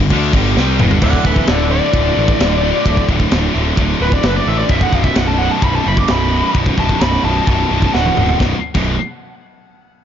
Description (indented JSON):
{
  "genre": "heavy metal",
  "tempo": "130 BPM",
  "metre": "4/4",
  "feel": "straight",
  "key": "B phrygian",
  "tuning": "A4 = 439 Hz",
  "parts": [
    { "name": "heavy high-gain guitar", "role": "riff", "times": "0.0-8.9 s", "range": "B1 to D4", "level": "-21 LUFS", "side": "left 13 dB", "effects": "distortion" },
    { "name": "high-gain distorted guitar", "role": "riff", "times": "0.0-8.9 s", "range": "B1 to D4", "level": "-21 LUFS", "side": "right 13 dB", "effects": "distortion" },
    { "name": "fuzz picked electric bass", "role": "bass", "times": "0.0-9.0 s", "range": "B0 to D2", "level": "-17 LUFS", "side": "equal", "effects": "overdrive" },
    { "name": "tight metal drum kit", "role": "drums", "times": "0.1-8.9 s", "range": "crash cymbal, kick drum, ride cymbal, snare drum, toms", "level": "-18 LUFS", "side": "equal", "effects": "none" },
    { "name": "high-gain lead guitar", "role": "melody", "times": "1.0-8.4 s", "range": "A4 to D6", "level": "-19 LUFS", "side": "equal", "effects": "distortion" }
  ],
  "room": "studio ambience",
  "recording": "dark, warm production, nothing above 7.4 kHz",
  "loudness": "-12 LUFS",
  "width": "side -9 dB against mid",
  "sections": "0.0-1.0 A section; 1.0-8.4 B section; 8.4-10.0 C section",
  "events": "drum fill 0.6-1.0, 7.9-8.4; lead electric guitar solo 1.0-8.4",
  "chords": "0.0 G5; 1.0 D5; 4.7 B5"
}